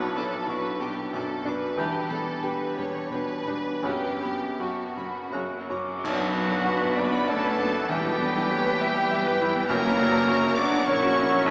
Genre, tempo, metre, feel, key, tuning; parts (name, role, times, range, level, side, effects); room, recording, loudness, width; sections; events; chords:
classical, romantic movement for piano and orchestra; 78-103 BPM; 3/4; rubato; B minor; A4 = 439 Hz
clear grand piano; melody; 0.0-11.5 s; B1 to G5; -30 LUFS; equal
clear oboe; second line; 0.0-11.5 s; F#4 to G5; -36 LUFS; equal
mellow clarinet; second line; 0.0-11.5 s; C#4 to F#5; -39 LUFS; equal
rich studio violin section; second line; 0.0-11.5 s; F#4 to D5; -35 LUFS; equal
silver concert flute; second line; 0.0-11.5 s; B4 to D6; -36 LUFS; equal
clear bassoon; accompaniment; 0.0-5.6 s; C#3 to E3; -43 LUFS; equal
mellow French horn section; sustained chords; 0.0-11.5 s; F#3 to E4; -35 LUFS; equal
clear chamber violin section; melody; 0.2-11.5 s; F#5 to D6; -37 LUFS; equal
rich symphonic viola section; accompaniment; 0.2-11.5 s; E3 to G4; -38 LUFS; equal
rich studio double bass section; bass; 0.2-11.5 s; E1 to B1; -43 LUFS; equal
rich symphonic cello section; bass; 0.2-11.5 s; E2 to D4; -40 LUFS; equal
cymbal swell, clash cymbals and concert bass drum; percussion; 1.8-7.3 s; -44 LUFS; equal
mellow trombone section; sustained chords; 6.1-11.5 s; E3 to E4; -42 LUFS; equal
timpani; percussion; 9.7-10.5 s; F#2; -42 LUFS; equal
wet church reverb, RT60 3.4 s; recorded in a church or concert hall, small speaker sound; -26 LUFS; mono
0.0-6.1 A section; 6.1-11.5 B section
band accent 6.1-6.7
0.0 Bm; 1.8 Em7; 3.8 F#sus4; 5.3 F#; 6.1 Bm; 7.9 Em; 9.7 F#